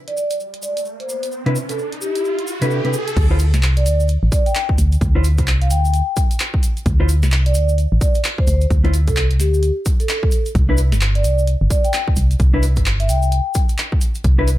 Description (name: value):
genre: UK garage, two-step garage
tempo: 130 BPM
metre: 4/4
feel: swing 61% on 16ths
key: D dorian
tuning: A4 = 440 Hz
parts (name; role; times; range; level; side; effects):
- riser; sound effects; 0.7-3.2 s; none; -29 LUFS; right 1 dB; none
- vibraphone with soft mallets; melody; 0.1-13.6 s; G4 to G5; -23 LUFS; equal; tape echo
- punchy analog drum machine; drums; 0.1-14.6 s; crash cymbal, handclaps, hi-hat, snare drum; -25 LUFS; equal; none
- tube shaker; percussion; 0.2-14.6 s; none; -32 LUFS; right 1 dB; none
- mellow electric guitar; stabs; 1.5-14.5 s; C3 to C5; -22 LUFS; left 1 dB; low-pass filter, tape echo
- organ-like FM bass; bass; 3.2-14.6 s; G1 to D2; -15 LUFS; equal; none
- electronic kick drum; drums; 3.2-14.4 s; none; -18 LUFS; equal; overdrive
room: light reverb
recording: none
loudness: -15 LUFS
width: side -15 dB against mid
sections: 0.0-3.2 A section; 3.2-14.6 B section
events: riser 0.7-3.2; drop 3.2-14.6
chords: 0.0 Cmaj7; 3.2 D7(no3); 10.6 C5